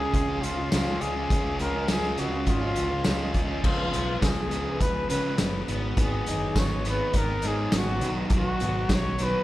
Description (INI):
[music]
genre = indie rock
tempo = 103 BPM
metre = 4/4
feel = straight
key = unclear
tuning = A4 = 442 Hz
[part]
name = breathy trumpet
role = melody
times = 0.0-9.4 s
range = E#4 to C#5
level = -30 LUFS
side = equal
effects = analog delay
[part]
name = crunchy overdriven guitar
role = riff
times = 0.0-9.4 s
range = G#2 to C#4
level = -32 LUFS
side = right 4 dB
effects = lush chorus
[part]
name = raw garage guitar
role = riff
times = 0.0-9.4 s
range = E#3 to E#4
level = -32 LUFS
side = left 3 dB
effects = overdrive, slapback echo
[part]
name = growling fingered electric bass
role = bass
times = 0.0-9.3 s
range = F#1 to C#3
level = -31 LUFS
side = equal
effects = overdrive
[part]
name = loose indie drum kit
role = drums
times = 0.1-9.3 s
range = crash cymbal, hi-hat, kick drum, snare drum, tambourine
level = -27 LUFS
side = equal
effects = none
[sound]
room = small room ambience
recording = live gig heard through the venue's PA, recital hall reverb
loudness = -23 LUFS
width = side -15 dB against mid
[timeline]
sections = 0.0-3.6 A section; 3.6-9.4 B section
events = none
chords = 0.0 C#; 3.6 C#7; 5.7 G#m; 8.0 B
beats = 0.15 0.73 | 1.31 1.90 2.48 3.06 | 3.65 4.23 4.81 5.39 | 5.98 6.56 7.14 7.72 | 8.31 8.89